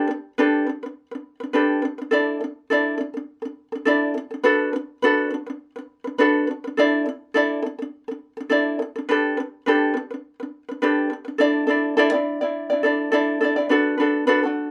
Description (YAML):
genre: pop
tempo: 104 BPM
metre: 4/4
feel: swing 55% on 16ths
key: D major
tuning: A4 = 440 Hz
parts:
  - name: ukulele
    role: solo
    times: 0.0-14.7 s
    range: D4 to D5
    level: -22 LUFS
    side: equal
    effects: none
room: light reverb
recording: none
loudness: -22 LUFS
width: mono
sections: 0.0-11.4 A section; 11.4-14.7 B section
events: none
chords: 0.0 Gadd9; 2.1 Dsus2; 4.4 Bm7; 6.8 Asus4; 9.1 Gadd9; 11.4 Dsus2; 13.7 Bm7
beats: 0.39 0.97 1.55 | 2.13 2.71 3.29 3.87 | 4.45 5.03 5.61 6.19 | 6.77 7.35 7.92 8.50 | 9.08 9.66 10.24 10.82 | 11.39 11.97 12.55 13.13 | 13.71 14.28